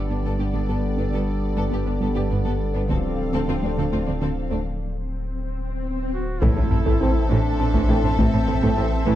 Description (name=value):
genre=cinematic, hybrid orchestral and electronic film score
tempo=68 BPM (dotted quarters)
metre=6/8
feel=straight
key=D dorian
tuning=A4 = 441 Hz
part: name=warm symphonic violin section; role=melody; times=0.0-9.2 s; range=D5 to F5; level=-38 LUFS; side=left 6 dB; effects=none
part: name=chorused pulse-width pad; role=sustained chords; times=0.0-9.2 s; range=E3 to D5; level=-30 LUFS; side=left 1 dB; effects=none
part: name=clear trombone section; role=sustained chords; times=0.0-8.9 s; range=E3 to C4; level=-32 LUFS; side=right 4 dB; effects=none
part: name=mellow French horn section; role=sustained chords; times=0.0-8.9 s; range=C4 to A4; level=-34 LUFS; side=left 4 dB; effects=none
part: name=tight sequenced synth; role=arpeggios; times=0.0-9.2 s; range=D3 to A4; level=-29 LUFS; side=right 2 dB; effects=chorus
part: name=saturated sub bass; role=bass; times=0.0-9.2 s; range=D1 to A1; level=-26 LUFS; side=equal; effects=none
part: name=clear studio violin section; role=second line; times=0.1-9.2 s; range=D4 to A4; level=-32 LUFS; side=left 3 dB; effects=none
part: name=rich symphonic viola section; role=accompaniment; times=0.1-9.1 s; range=E3 to C4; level=-33 LUFS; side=right 1 dB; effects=none
part: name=rich symphonic cello section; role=bass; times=0.1-9.1 s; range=D2 to A2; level=-29 LUFS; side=right 2 dB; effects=none
part: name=rich symphonic double bass section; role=bass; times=0.2-9.1 s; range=G1 to D2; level=-30 LUFS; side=right 2 dB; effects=none
part: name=taiko ensemble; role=drums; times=2.9-9.2 s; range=none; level=-24 LUFS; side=equal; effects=none
part: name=swell and impact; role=sound effects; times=5.1-8.2 s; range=none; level=-30 LUFS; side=left 1 dB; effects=none
part: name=warm duduk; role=melody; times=6.1-9.2 s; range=C4 to F#4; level=-28 LUFS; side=right 3 dB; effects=none
room=moderate scoring stage reverb, RT60 1.9 s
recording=dark, warm production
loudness=-20 LUFS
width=side -12 dB against mid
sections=0.0-6.4 A section; 6.4-9.2 B section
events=break 4.7-6.4; swell 5.1-6.4; drum fill 6.0-6.4; impact 6.4-8.2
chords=0.0 Gadd9; 2.9 Dm7; 6.4 Am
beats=0.25 | 1.13 2.01 | 2.89 3.78 | 4.66 5.54 | 6.42 7.30 | 8.19 9.07